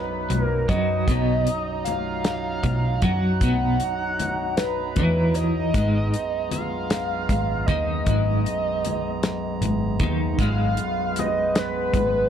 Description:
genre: psychedelic rock.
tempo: 52 BPM (dotted quarters).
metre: 6/8.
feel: straight.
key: B lydian.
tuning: A4 = 443 Hz.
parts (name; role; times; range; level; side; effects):
overdriven synth lead; melody; 0.0-12.3 s; B4 to F#5; -26 LUFS; equal; phaser, slapback echo.
pedal harmonium; sustained chords; 0.0-12.3 s; F#3 to A#5; -31 LUFS; right 5 dB; none.
metallic inharmonic drone; drone; 0.0-12.3 s; B1 to F#2; -33 LUFS; left 1 dB; chorus, built-in reverb.
congas; percussion; 0.1-12.1 s; none; -35 LUFS; left 7 dB; none.
twelve-string electric guitar; riff; 0.3-12.3 s; G#2 to F#3; -24 LUFS; right 1 dB; tremolo, double-tracked left and right.
vintage muted picked electric bass; bass; 0.3-12.3 s; G#1 to F#2; -26 LUFS; equal; none.
damped 70s drum kit; drums; 0.3-12.1 s; hi-hat, kick drum, snare drum; -24 LUFS; equal; none.
room: light reverb, small room reverb.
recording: none.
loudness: -21 LUFS.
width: side -9 dB against mid.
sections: 0.0-12.3 A section.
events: none.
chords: 0.0 B; 5.8 G#madd9.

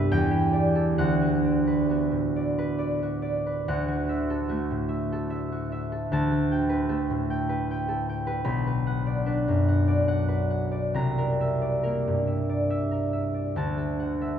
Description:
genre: classical, solo harp piece.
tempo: 66-79 BPM.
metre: 3/4.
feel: rubato.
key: unclear.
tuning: A4 = 440 Hz.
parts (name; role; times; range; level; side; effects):
concert harp; solo; 0.0-14.4 s; B1 to B5; -23 LUFS; equal; none.
room: wet cathedral reverb, RT60 4.3 s.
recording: none.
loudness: -24 LUFS.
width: side -8 dB against mid.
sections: 0.0-3.7 A section; 3.7-14.4 B section.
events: none.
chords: 0.1 Em7; 1.0 D6; 3.7 Dadd9; 6.1 A9sus4/D; 8.4 Bm; 10.9 C9; 13.6 Dadd9.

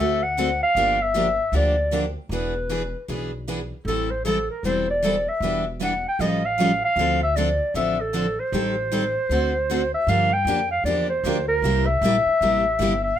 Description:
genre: acoustic string swing (jazz manouche).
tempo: 154 BPM.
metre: 4/4.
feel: swing 62% on 8ths.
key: D minor.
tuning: A4 = 440 Hz.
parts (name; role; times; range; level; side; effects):
breathy clarinet; melody; 0.0-13.2 s; A4 to G5; -22 LUFS; equal; none.
picked steel-string acoustic guitar; accompaniment; 0.0-12.9 s; C3 to A4; -26 LUFS; left 4 dB; none.
picked steel-string acoustic guitar; accompaniment; 0.0-12.9 s; C3 to B4; -30 LUFS; right 7 dB; none.
upright bass; bass; 0.0-13.2 s; E1 to G2; -28 LUFS; equal; none.
room: moderate studio reverb, RT60 0.6 s.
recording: minimal, uncompressed stereo recording.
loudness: -20 LUFS.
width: side -10 dB against mid.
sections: 0.0-10.1 A section; 10.1-13.2 B section.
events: none.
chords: 0.0 D7; 0.8 Gm7; 2.3 E7; 3.9 Am7; 5.4 Em7; 6.2 Aaug7; 7.0 Dm7; 8.5 Am7b5; 9.3 D7; 10.1 Gm7; 11.6 C7.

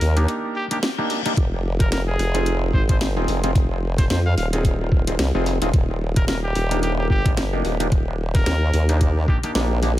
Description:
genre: glitch hop.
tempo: 110 BPM.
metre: 4/4.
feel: swing 57% on 16ths.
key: unclear.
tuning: A4 = 440 Hz.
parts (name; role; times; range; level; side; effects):
bright trumpet; melody; 0.0-9.5 s; G4 to F5; -30 LUFS; equal; vintage 12-bit sampler grit, dub echo.
formant-sweep wobble bass; bass; 0.0-10.0 s; Eb1 to F2; -21 LUFS; equal; chorus.
drum and bass drum kit; drums; 0.0-9.9 s; hi-hat, rim click, snare drum; -29 LUFS; equal; studio reverb, dub echo.
overdriven clav; stabs; 0.2-9.9 s; Bb3 to Ab4; -26 LUFS; equal; phaser, sidechain pumping, dub echo.
reverse cymbal; sound effects; 0.5-1.4 s; none; -33 LUFS; left 9 dB; none.
electronic kick drum; drums; 1.4-9.4 s; none; -19 LUFS; equal; studio reverb.
room: little or no reverb.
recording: echo-heavy mix.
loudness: -18 LUFS.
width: side -14 dB against mid.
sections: 0.0-10.0 A section.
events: break 0.3-1.4; reverse cymbal 0.5-1.4.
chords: 0.0 Ebmaj7; 1.4 Fm7; 5.7 Ebmaj7.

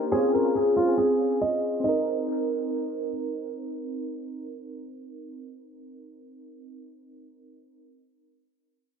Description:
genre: hip hop, drill.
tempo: 140 BPM.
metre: 4/4.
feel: half-time.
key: C minor.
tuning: A4 = 440 Hz.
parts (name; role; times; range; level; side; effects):
warbly lo-fi synth keys; accompaniment; 0.0-7.8 s; Bb3 to Bb4; -28 LUFS; equal; chorus, low-pass filter, analog delay.
warm upright piano; melody; 0.1-3.1 s; F4 to Eb5; -25 LUFS; right 1 dB; low-pass filter, analog delay.
room: light reverb, small room ambience.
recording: echo-heavy mix.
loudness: -24 LUFS.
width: side -7 dB against mid.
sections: 0.0-1.8 A section; 1.8-5.3 B section.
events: filter sweep 0.0-1.8.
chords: 0.1 Dbmaj7; 1.8 Cm7.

